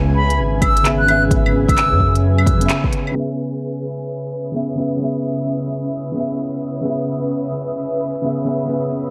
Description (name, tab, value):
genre	future garage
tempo	130 BPM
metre	4/4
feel	swing 63% on 16ths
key	C# minor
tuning	A4 = 440 Hz
part	felt-muted upright piano	accompaniment	0.0-9.1 s	C#3 to E5	-24 LUFS	equal	sidechain pumping, low-pass filter, digital delay
part	granular cloud pad	sustained chords	0.0-9.1 s	C#3 to D#6	-28 LUFS	equal	built-in reverb, vintage 12-bit sampler grit, sidechain pumping
part	dark detuned saw bass	bass	0.0-2.7 s	G#1 to F#2	-20 LUFS	equal	sidechain pumping
part	bright concert flute	melody	0.2-2.1 s	B5 to F#6	-21 LUFS	equal	digital delay
part	organic electronic drum kit	drums	0.3-9.1 s	claves, handclaps, hi-hat	-26 LUFS	equal	overdrive
part	electronic kick drum	drums	0.6-2.9 s	none	-21 LUFS	equal	overdrive
room	light reverb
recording	bright 1980s-style digital production, vinyl crackle, low-pass filter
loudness	-19 LUFS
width	mono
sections	0.0-3.2 A section; 3.2-9.1 B section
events	band accent 2.7; filter sweep on felt piano 3.2-9.1; filter sweep 3.2-9.1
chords	0.0 C#m7